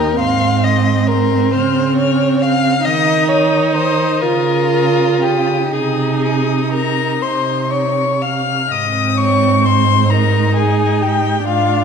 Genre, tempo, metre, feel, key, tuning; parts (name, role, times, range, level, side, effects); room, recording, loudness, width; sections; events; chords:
classical, slow romantic movement for string quartet; 39-46 BPM (dotted quarters); 6/8; rubato; Ab major; A4 = 444 Hz
dark violin; melody; 0.0-11.8 s; F5 to F6; -20 LUFS; left 8 dB
warm violin; second line; 0.0-11.8 s; F4 to F5; -18 LUFS; left 4 dB
warm viola; accompaniment; 0.0-11.8 s; C4 to F4; -18 LUFS; right 4 dB
warm cello; bass; 0.0-11.8 s; Ab2 to Eb3; -18 LUFS; right 4 dB
wet recital hall reverb, RT60 1.7 s; dark, warm production; -13 LUFS; side -6 dB against mid
0.0-8.7 A section; 8.7-11.8 A section
0.2 Ab; 1.5 Dbmaj7; 2.9 Cm/Eb; 4.2 Eb5/Db; 5.7 Ab/C; 8.7 Ab